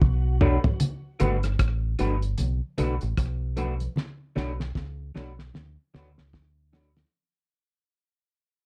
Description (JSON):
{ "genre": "lovers rock reggae", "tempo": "76 BPM", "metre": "4/4", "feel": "swing 59% on 16ths", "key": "B minor", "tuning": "A4 = 445 Hz", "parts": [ { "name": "phased string machine", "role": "second line", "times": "0.0-0.8 s", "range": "F#4 to F#5", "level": "-46 LUFS", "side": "equal", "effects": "ensemble chorus, phaser" }, { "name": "deep dub fingered electric bass", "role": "bass", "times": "0.0-7.0 s", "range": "G1 to D2", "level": "-29 LUFS", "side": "equal", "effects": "none" }, { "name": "cloth-damped thuddy drum kit", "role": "drums", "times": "0.0-7.1 s", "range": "hi-hat, kick drum, rim click, snare drum, toms", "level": "-27 LUFS", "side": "equal", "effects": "none" }, { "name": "congas", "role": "percussion", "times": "0.0-7.1 s", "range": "none", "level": "-34 LUFS", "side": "equal", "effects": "slapback echo" }, { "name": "mellow tine electric piano", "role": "accompaniment", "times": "0.4-7.0 s", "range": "D4 to C#5", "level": "-33 LUFS", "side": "equal", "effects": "slapback echo" }, { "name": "electric guitar through a small old amp", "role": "stabs", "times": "0.4-7.0 s", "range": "A3 to B4", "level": "-34 LUFS", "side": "equal", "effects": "analog chorus" } ], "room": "little or no reverb", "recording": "dry, close 1970s-style studio recording", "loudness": "-27 LUFS", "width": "mono", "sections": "0.8-7.1 A section", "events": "drum fill 0.0-0.8, 4.0-7.1; fade-out 0.8-7.1", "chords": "0.0 Bm7; 0.8 Gmaj9; 4.0 Bm7" }